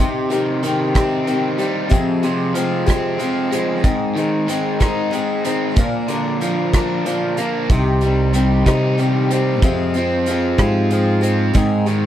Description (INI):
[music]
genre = folk rock and heartland rock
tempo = 62 BPM (dotted quarters)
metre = 6/8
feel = straight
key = C minor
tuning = A4 = 440 Hz
[part]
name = picked swing-style acoustic guitar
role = accompaniment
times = 0.0-12.1 s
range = F2 to Bb4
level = -21 LUFS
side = left 4 dB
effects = none
[part]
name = overdriven electric guitar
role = riff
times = 0.0-12.1 s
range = F2 to F4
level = -20 LUFS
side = right 2 dB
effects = none
[part]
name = loose indie drum kit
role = drums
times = 0.3-12.0 s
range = hi-hat, kick drum, rim click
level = -19 LUFS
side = right 1 dB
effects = none
[part]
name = fingered electric bass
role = bass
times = 7.7-12.1 s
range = C2 to C3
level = -18 LUFS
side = right 1 dB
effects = none
[sound]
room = little or no reverb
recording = none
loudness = -15 LUFS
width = side -11 dB against mid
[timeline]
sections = 0.0-12.1 A section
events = none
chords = 0.0 Cm; 1.9 Fm; 3.9 Ab; 5.8 Bb; 7.7 Cm; 9.6 Fm; 11.6 Ab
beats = | 0.00 0.96 | 1.92 2.89 | 3.85 4.81 | 5.78 6.74 | 7.70 8.67 | 9.63 10.59 | 11.55